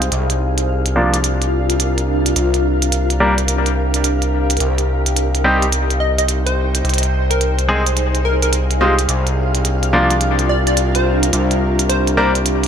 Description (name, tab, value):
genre	glitch hop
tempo	107 BPM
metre	4/4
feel	swing 64% on 16ths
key	unclear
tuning	A4 = 440 Hz
part	gritty driven synth bass	bass	0.0-12.7 s	C2	-18 LUFS	equal	tube saturation
part	electronic hi-hat	drums	0.0-12.7 s	none	-22 LUFS	right 3 dB	none
part	granular cloud pad	texture	0.0-12.7 s	D4 to G5	-21 LUFS	equal	built-in reverb, analog chorus
part	bright grand piano	stabs	1.0-12.3 s	F3 to Bb4	-19 LUFS	equal	low-pass filter, ping-pong delay
part	plucky unison lead	melody	6.0-12.4 s	G4 to Eb5	-22 LUFS	left 1 dB	wide subtle chorus, ping-pong delay
room	moderate lush hall reverb, RT60 1.6 s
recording	bright 1980s-style digital production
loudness	-14 LUFS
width	side -8 dB against mid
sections	0.0-12.7 A section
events	filter sweep on grand piano 0.0-12.7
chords	0.1 Bb/C; 2.4 Gm7/C; 4.6 Cm; 6.8 Fm7/C; 9.1 Bb/C; 11.3 Gm7/C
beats	| 0.12 0.68 1.24 1.80 | 2.36 2.92 3.48 4.04 | 4.61 5.17 5.73 6.29 | 6.85 7.41 7.97 8.53 | 9.09 9.65 10.21 10.77 | 11.33 11.89 12.46